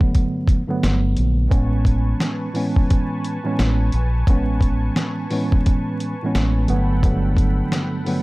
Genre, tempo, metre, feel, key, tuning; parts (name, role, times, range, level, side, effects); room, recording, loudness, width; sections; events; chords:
hip hop, boom-bap hip-hop; 87 BPM; 4/4; swing 63% on 16ths; A major; A4 = 440 Hz
mellow tine electric piano; accompaniment; 0.0-8.2 s; G2 to C#4; -22 LUFS; right 1 dB; medium stereo tremolo, high-pass filter, low-pass filter
dusty soul sampler-style drum kit; drums; 0.0-8.2 s; hi-hat, kick drum, snare drum; -19 LUFS; equal
deep dub fingered electric bass; bass; 0.8-7.6 s; G1 to Bb1; -19 LUFS; equal
lush unison pad; sustained chords; 1.5-8.2 s; A4 to C#6; -33 LUFS; equal; chorus, high-pass filter, low-pass filter
digital ambience; dark, warm production, vinyl crackle; -17 LUFS; side -21 dB against mid
0.0-8.2 A section
0.0 Gmaj9; 1.5 Amaj9; 6.7 Gmaj9